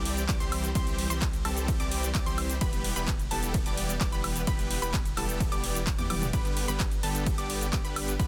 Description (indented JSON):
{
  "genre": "EDM, festival progressive house",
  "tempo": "129 BPM",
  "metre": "4/4",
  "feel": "straight",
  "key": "unclear",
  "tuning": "A4 = 440 Hz",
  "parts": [
    { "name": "unison pluck", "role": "arpeggios", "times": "0.0-8.3 s", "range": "A5 to D6", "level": "-41 LUFS", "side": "equal", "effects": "sidechain pumping, digital delay" },
    { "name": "supersaw chords", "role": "riff", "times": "0.0-8.3 s", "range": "D3 to D5", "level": "-36 LUFS", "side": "equal", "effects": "sidechain pumping, digital delay" },
    { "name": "saturated sub bass", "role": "bass", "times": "0.0-8.3 s", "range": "E1 to E2", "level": "-37 LUFS", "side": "equal", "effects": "sidechain pumping" },
    { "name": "big-room dance drum kit", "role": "drums", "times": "0.1-8.3 s", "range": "handclaps, hi-hat, ride cymbal, shaker, toms, woodblock", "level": "-36 LUFS", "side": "equal", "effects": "none" },
    { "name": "electronic kick drum", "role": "drums", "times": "0.3-8.3 s", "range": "none", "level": "-33 LUFS", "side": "equal", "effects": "overdrive" }
  ],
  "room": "little or no reverb",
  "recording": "dense, heavily limited modern master",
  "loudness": "-29 LUFS",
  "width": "mono",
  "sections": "0.0-8.3 A section",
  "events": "drum fill 6.0-6.3",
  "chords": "0.0 C; 2.6 Em; 6.3 G"
}